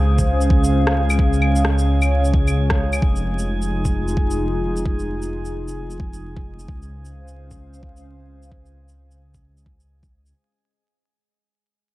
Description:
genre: future garage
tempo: 131 BPM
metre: 4/4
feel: swing 61% on 16ths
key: unclear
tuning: A4 = 440 Hz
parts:
  - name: dark analog pad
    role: sustained chords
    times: 0.0-10.3 s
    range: Db4 to F5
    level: -25 LUFS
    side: equal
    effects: chorus, sidechain pumping
  - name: dark detuned saw bass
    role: bass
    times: 0.0-10.3 s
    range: F1 to Db2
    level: -21 LUFS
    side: equal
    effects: sidechain pumping
  - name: drifting glass-harmonics texture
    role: texture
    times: 0.0-10.4 s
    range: Ab3 to Ab4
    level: -29 LUFS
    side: left 1 dB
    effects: chorus, built-in reverb
  - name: electronic kick drum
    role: drums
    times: 0.2-10.1 s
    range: none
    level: -20 LUFS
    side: equal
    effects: overdrive
  - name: electronic shaker, rim click and claves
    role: drums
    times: 0.2-10.3 s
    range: none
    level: -27 LUFS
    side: left 1 dB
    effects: none
room: digital ambience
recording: vinyl crackle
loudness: -17 LUFS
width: side -18 dB against mid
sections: 0.0-10.3 A section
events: fade-out 0.0-10.3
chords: 0.0 Dbmaj7; 3.0 Fm7; 6.7 Dbmaj7

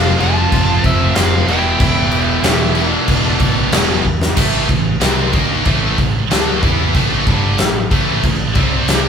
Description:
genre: hard rock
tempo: 93 BPM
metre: 4/4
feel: straight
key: A minor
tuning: A4 = 439 Hz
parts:
  - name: biting lead guitar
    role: melody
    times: 0.0-3.7 s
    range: E5 to A5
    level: -22 LUFS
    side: right 1 dB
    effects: overdrive
  - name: octave-fuzz lead guitar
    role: second line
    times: 0.0-3.7 s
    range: C4 to F4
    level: -25 LUFS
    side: right 4 dB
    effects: distortion
  - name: distorted electric guitar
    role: riff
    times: 0.0-9.1 s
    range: E2 to E4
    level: -21 LUFS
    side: left 7 dB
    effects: overdrive
  - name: high-gain distorted guitar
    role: riff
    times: 0.0-9.1 s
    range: E2 to E4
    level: -20 LUFS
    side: right 8 dB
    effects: distortion
  - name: scooped high-gain guitar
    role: riff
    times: 0.0-9.1 s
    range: E2 to E4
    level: -22 LUFS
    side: equal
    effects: distortion
  - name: overdriven fingered electric bass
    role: bass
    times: 0.0-9.1 s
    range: E1 to E2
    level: -20 LUFS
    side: equal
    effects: none
  - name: huge arena drum kit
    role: drums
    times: 0.2-9.0 s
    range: crash cymbal, kick drum, snare drum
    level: -16 LUFS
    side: equal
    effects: none
room: light reverb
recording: band playing live in one room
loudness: -12 LUFS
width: side -7 dB against mid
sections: 0.0-4.4 A section; 4.4-9.1 B section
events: drum fill 4.1-4.4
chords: 0.0 F; 1.5 Em; 4.4 Am; 8.6 C5

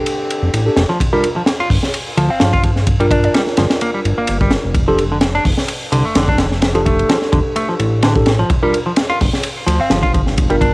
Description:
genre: breakbeat, breaks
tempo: 128 BPM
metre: 4/4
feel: swing 54% on 16ths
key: G minor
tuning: A4 = 442 Hz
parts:
  - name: warm chamber string section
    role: sustained chords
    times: 0.0-1.0 s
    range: D3 to G4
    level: -29 LUFS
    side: left 2 dB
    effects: sidechain pumping, cassette tape
  - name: mellow tine electric piano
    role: stabs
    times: 0.0-10.7 s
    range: D4 to Bb4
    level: -19 LUFS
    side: right 1 dB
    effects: cassette tape, tape echo
  - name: crunchy breakbeat drum kit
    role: drums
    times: 0.1-10.7 s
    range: hi-hat, kick drum, ride cymbal, snare drum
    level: -16 LUFS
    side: equal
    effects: cassette tape
  - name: fat analog bass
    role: bass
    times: 0.4-10.7 s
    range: F1 to D2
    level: -17 LUFS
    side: equal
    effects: none
  - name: semi-hollow electric guitar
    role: riff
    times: 0.9-10.7 s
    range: D3 to F4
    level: -20 LUFS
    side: equal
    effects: tube saturation, cassette tape, tape echo
  - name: mallet-like synth pluck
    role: melody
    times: 2.3-3.3, 9.8-10.5 s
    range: D5 to F5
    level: -25 LUFS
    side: equal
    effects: chorus, old record sound, cassette tape, tape echo
room: light reverb, small room ambience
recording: home recording on cassette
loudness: -13 LUFS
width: side -24 dB against mid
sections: 0.0-1.0 A section; 1.0-10.7 A section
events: drop 0.0-1.0, 1.0-10.7; break 0.1-1.0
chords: 0.0 F6; 1.0 Gm7; 4.8 F6; 8.5 Gm7

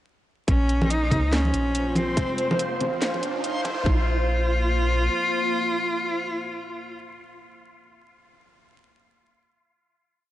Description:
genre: deep dubstep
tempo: 142 BPM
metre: 4/4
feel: swing 60% on 16ths, half-time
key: Bb minor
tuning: A4 = 440 Hz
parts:
  - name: rich cello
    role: melody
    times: 0.5-6.9 s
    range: C4 to F4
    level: -26 LUFS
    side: equal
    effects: dub echo
  - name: deep dark ambient pad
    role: sustained chords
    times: 1.0-6.9 s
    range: Bb3 to F5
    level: -32 LUFS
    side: equal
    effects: chorus, built-in reverb
  - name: soft dub sub bass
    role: bass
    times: 0.5-5.1 s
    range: F1 to Db2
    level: -26 LUFS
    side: equal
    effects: none
  - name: electronic kick drum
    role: drums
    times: 0.5-4.0 s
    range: none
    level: -22 LUFS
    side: equal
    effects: none
  - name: garage drum kit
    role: drums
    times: 0.5-3.8 s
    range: hi-hat, snare drum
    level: -29 LUFS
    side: equal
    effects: none
  - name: riser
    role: sound effects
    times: 2.1-3.9 s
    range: none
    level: -34 LUFS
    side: right 2 dB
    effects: none
  - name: backwards swelling texture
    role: texture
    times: 1.2-3.9 s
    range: C5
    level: -32 LUFS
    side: left 1 dB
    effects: built-in reverb
  - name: congas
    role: percussion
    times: 0.8-3.8 s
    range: none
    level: -28 LUFS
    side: equal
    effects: none
room: light reverb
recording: dry, gritty hardware recording, vinyl crackle, high-pass filter, nothing above 10.7 kHz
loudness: -21 LUFS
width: side -14 dB against mid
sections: 0.5-3.9 build; 3.9-7.2 final chord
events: build-up 0.5-3.9; filter sweep 0.5-3.9; riser 2.1-3.9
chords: 0.5 Bbm; 2.2 F; 3.9 Bb5

